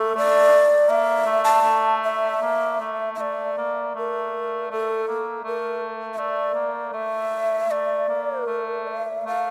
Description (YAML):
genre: japanese traditional, Japanese chamber music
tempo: 76-84 BPM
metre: 2/4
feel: rubato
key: A miyako bushi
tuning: A4 = 442 Hz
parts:
  - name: breathy long shakuhachi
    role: melody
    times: 0.0-9.5 s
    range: A4 to A5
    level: -24 LUFS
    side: equal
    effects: none
  - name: mellow cor anglais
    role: second line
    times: 0.0-9.5 s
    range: A3 to Bb3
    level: -28 LUFS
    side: equal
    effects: none
room: wet cathedral reverb, RT60 5.7 s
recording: none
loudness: -22 LUFS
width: mono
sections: 0.0-3.2 A section; 3.2-9.5 B section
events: none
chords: none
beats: | 0.17 0.89 | 1.64 2.42 | 3.21 3.97 | 4.71 5.44 | 6.18 6.93 | 7.69 8.47 | 9.24